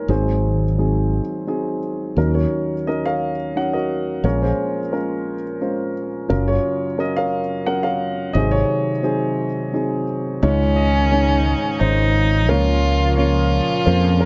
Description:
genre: acoustic folk-pop ballad.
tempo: 87 BPM.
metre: 3/4.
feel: straight.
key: Db major.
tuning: A4 = 444 Hz.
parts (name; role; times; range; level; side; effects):
dark upright piano; melody; 0.0-14.3 s; Gb1 to Gb5; -23 LUFS; equal; none.
fretless electric bass; bass; 0.1-14.3 s; Gb1 to F2; -21 LUFS; equal; none.
dark violin; second line; 10.4-14.3 s; Db4 to F4; -24 LUFS; equal; none.
chorused pulse-width pad; sustained chords; 10.4-14.3 s; Bb2 to F4; -28 LUFS; equal; none.
room: light reverb.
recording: nothing above 7.6 kHz.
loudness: -20 LUFS.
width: mono.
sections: 0.0-2.2 A section; 2.2-10.4 B section; 10.4-14.3 C section.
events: none.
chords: 0.1 Ab7; 2.2 Ebm7; 4.2 Bbm7; 6.3 Gbmaj7; 8.4 Ab7; 10.4 Dbsus2; 12.5 Bbm/Db.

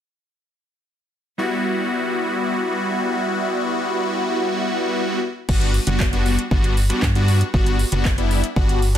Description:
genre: dance-pop.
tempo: 117 BPM.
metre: 4/4.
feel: straight.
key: E minor.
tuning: A4 = 438 Hz.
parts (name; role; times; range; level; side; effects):
big bright polysynth; accompaniment; 1.4-9.0 s; G3 to F#4; -21 LUFS; left 1 dB; phaser, sidechain pumping.
organ-like FM bass; bass; 5.5-9.0 s; F#1 to G2; -19 LUFS; equal; sidechain pumping.
pop drum kit; drums; 5.5-9.0 s; crash cymbal, handclaps, hi-hat, kick drum; -21 LUFS; equal; overdrive.
room: light reverb.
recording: dense, heavily limited modern master.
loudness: -18 LUFS.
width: side -10 dB against mid.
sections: 1.4-5.5 A section; 5.5-9.0 B section.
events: none.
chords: 1.4 Emadd9; 5.2 N.C.; 5.5 Gmaj7.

